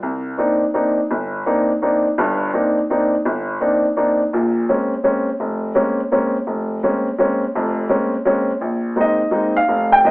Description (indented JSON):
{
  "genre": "jazz",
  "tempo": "168 BPM",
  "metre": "3/4",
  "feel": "swing 64% on 8ths",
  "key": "unclear",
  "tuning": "A4 = 441 Hz",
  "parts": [
    { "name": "warm upright piano", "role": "solo", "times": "0.0-10.1 s", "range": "F1 to G5", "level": "-16 LUFS", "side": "equal", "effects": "none" }
  ],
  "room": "moderate studio reverb, RT60 0.8 s",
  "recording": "telephone sound",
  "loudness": "-16 LUFS",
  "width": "side -24 dB against mid",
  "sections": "0.0-8.6 A section; 8.6-10.1 B section",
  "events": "none",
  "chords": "0.0 Cm9; 4.3 Bbm9; 8.6 Bb9sus4"
}